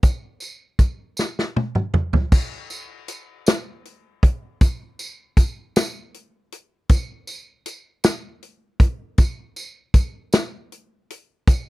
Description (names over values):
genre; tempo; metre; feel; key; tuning
gospel; 52 BPM (dotted quarters); 6/8; straight; none; none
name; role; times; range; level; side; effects
natural country drum kit; drums; 0.0-11.7 s; crash cymbal, hi-hat, kick drum, snare drum, toms; -16 LUFS; equal; none
tambourine; percussion; 0.0-11.7 s; none; -34 LUFS; right 3 dB; none
room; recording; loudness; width
little or no reverb; dry, close 1970s-style studio recording; -19 LUFS; side -19 dB against mid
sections
0.0-2.3 A section; 2.3-11.7 B section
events
drum fill 1.2-2.3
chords
none